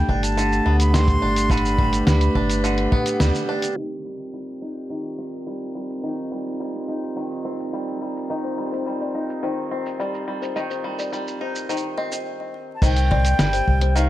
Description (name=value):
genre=folktronica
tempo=106 BPM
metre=4/4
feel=straight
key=C dorian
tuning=A4 = 441 Hz
part: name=reedy concert flute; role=melody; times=0.0-2.6, 12.8-14.1 s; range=F5 to C6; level=-25 LUFS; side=equal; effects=tape echo
part: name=dark string quartet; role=sustained chords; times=0.0-12.3 s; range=A3 to B4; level=-26 LUFS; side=right 1 dB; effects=vintage 12-bit sampler grit
part: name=bluegrass banjo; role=arpeggios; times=0.0-14.1 s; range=D3 to Eb4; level=-29 LUFS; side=equal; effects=low-pass filter, tape echo
part: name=warm sub bass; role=bass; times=0.0-3.3, 12.8-14.1 s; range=G1 to D2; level=-20 LUFS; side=equal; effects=none
part: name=kick drum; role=drums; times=0.1-3.0, 12.8-13.8 s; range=none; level=-22 LUFS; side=equal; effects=none
part: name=lo-fi sampler-style drum kit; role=drums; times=0.2-14.1 s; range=crash cymbal, hi-hat, shaker, snare drum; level=-25 LUFS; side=equal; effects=none
part: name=kalimba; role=second line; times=8.4-13.9 s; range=C5 to Eb5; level=-30 LUFS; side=left 4 dB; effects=tape echo
room=light reverb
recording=vinyl crackle, low-pass filter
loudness=-20 LUFS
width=side -14 dB against mid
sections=0.0-3.8 A section; 3.8-12.8 B section; 12.8-14.1 C section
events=band accent 3.2; filter sweep on five-string banjo 3.8-12.8; filter sweep 3.8-12.8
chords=0.0 G; 3.8 Cm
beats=0.37 0.94 | 1.50 2.07 2.64 3.20 | 3.77 4.33 4.90 5.47 | 6.03 6.60 7.16 7.73 | 8.30 8.86 9.43 9.99 | 10.56 11.13 11.69 12.26 | 12.82 13.39 13.96